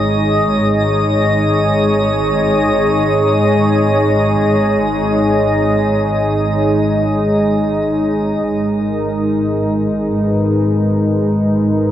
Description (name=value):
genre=ambient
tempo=free time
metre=none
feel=none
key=G# minor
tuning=A4 = 440 Hz
part: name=warm analog pad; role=sustained chords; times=0.0-11.9 s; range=G#3 to C#5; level=-14 LUFS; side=equal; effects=chorus
part: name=dark symphonic double bass section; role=bass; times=0.0-11.9 s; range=G#1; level=-20 LUFS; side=equal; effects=tube saturation
part: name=drifting glass-harmonics texture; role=texture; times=0.0-8.5 s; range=D#5 to D#6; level=-20 LUFS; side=equal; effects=chorus, built-in reverb
room=wet huge ambient reverb, RT60 8.0 s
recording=worn, warbling old tape, cassette tape, warbly pitch drift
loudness=-12 LUFS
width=side -11 dB against mid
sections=0.0-8.5 A section; 8.5-11.9 A section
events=none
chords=0.0 G#5; 8.5 G#m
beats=free time